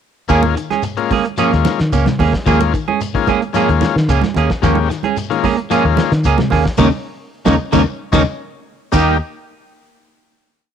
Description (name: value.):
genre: afrobeat.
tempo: 111 BPM.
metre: 4/4.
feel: straight.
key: Eb mixolydian.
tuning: A4 = 439 Hz.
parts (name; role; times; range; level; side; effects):
combo organ; accompaniment; 0.3-9.2 s; G3 to G4; -20 LUFS; left 11 dB; plate reverb.
clean electric guitar; arpeggios; 0.3-9.1 s; C3 to Ab3; -21 LUFS; left 8 dB; ensemble chorus.
clean electric guitar; stabs; 0.3-9.2 s; Bb3 to Ab4; -18 LUFS; right 8 dB; harmonic tremolo, plate reverb.
fingered electric bass; bass; 0.3-9.2 s; Db2 to Eb3; -16 LUFS; left 1 dB; none.
cloth-damped thuddy drum kit; drums; 0.3-9.1 s; crash cymbal, hi-hat, kick drum, snare drum; -22 LUFS; left 1 dB; cassette tape.
shekere; percussion; 0.3-9.1 s; none; -28 LUFS; left 6 dB; none.
congas; percussion; 0.4-9.1 s; none; -22 LUFS; right 10 dB; none.
room: moderate booth ambience, RT60 0.2 s.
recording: home recording on cassette.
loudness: -13 LUFS.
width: side -8 dB against mid.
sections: 0.3-8.9 groove; 8.9-10.7 final chord.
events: band accent 6.8-8.9; drum fill 7.9-8.9; transistor combo organ fill 8.1-8.9.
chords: 0.3 Eb7sus4; 8.9 Eb.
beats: | 0.30 0.84 1.38 1.93 | 2.47 3.01 3.55 4.09 | 4.64 5.18 5.71 6.25 | 6.79 7.33 7.87 8.40 | 8.94.